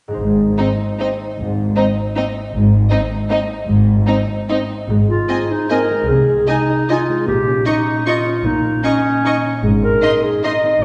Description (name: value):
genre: classical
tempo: 141-168 BPM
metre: 3/4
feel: rubato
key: Ab major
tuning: A4 = 440 Hz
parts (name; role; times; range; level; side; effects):
- concert harp; arpeggios; 0.1-10.8 s; Ab2 to Eb5; -24 LUFS; equal; none
- dark studio cello section; bass; 0.2-10.8 s; G2 to C3; -22 LUFS; equal; none
- warm studio double bass section; bass; 0.2-10.8 s; Ab1 to C2; -22 LUFS; equal; none
- rich studio violin section; melody; 0.6-10.5 s; Eb5 to Db6; -30 LUFS; equal; none
- clear studio violin section; second line; 0.6-10.5 s; Eb4 to Eb5; -27 LUFS; equal; none
- warm studio viola section; accompaniment; 0.6-10.5 s; C4 to Eb4; -27 LUFS; equal; none
- clear clarinet; second line; 5.1-10.8 s; Db4 to Eb5; -19 LUFS; equal; none
room: wet scoring stage reverb, RT60 1.7 s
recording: heard from further back in the room, nothing above 11.0 kHz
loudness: -16 LUFS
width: mono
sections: 0.2-4.9 A section; 4.9-10.8 B section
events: none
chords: 0.2 Ab; 6.1 Ab/C; 7.3 Eb7(no3)/Bb; 9.6 Ab